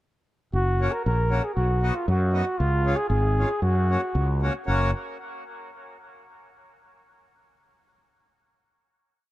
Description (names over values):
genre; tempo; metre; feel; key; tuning
alpine folk, alpine dance band; 117 BPM; 2/4; straight; F# major; A4 = 439 Hz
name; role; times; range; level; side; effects
mellow flugelhorn; melody; 0.5-4.9 s; E#4 to A#4; -28 LUFS; equal; dub echo
fretless electric bass; bass; 0.5-4.9 s; F#1 to F#2; -22 LUFS; equal; none
accordion; accompaniment; 0.8-4.9 s; G#3 to F#4; -32 LUFS; left 2 dB; dub echo
room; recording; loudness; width
light reverb; echo-heavy mix; -21 LUFS; side -16 dB against mid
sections
0.5-4.7 A section; 4.7-5.7 final chord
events
none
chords
0.5 F#; 1.6 B; 2.6 C#; 3.6 F#